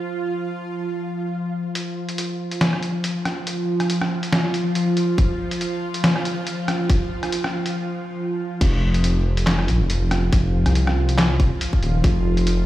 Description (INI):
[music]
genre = deep dubstep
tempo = 140 BPM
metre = 4/4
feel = swing 55% on 16ths, half-time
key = unclear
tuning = A4 = 440 Hz
[part]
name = bowed-like drone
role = sustained chords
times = 0.0-12.7 s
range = F3 to F4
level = -24 LUFS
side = equal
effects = built-in reverb, phaser
[part]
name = trip hop sampler-style drum kit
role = drums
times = 1.8-12.6 s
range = crash cymbal, handclaps, hi-hat, rim click, snare drum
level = -24 LUFS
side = equal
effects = low-pass filter on hats, low-pass filter on snare, low-pass filter on cymbals
[part]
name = electronic kick drum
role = drums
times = 5.2-12.1 s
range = none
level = -19 LUFS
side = equal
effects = none
[part]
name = dark detuned saw bass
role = bass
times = 8.6-12.7 s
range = Eb1 to C2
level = -19 LUFS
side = equal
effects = none
[sound]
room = light reverb, digital ambience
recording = played on a big sound system in a bare room, stone room reverb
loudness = -19 LUFS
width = side -14 dB against mid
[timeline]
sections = 0.0-1.8 A section; 1.8-8.6 B section; 8.6-12.7 C section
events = build-up 1.8-8.6; break 7.8-8.6; drop 8.6-12.7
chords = 0.0 N.C.; 8.6 F5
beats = | 0.04 0.47 0.90 1.33 | 1.75 2.18 2.61 3.04 | 3.47 3.90 4.33 4.75 | 5.18 5.61 6.04 6.47 | 6.90 7.33 7.75 8.18 | 8.61 9.04 9.47 9.90 | 10.33 10.75 11.18 11.61 | 12.04 12.47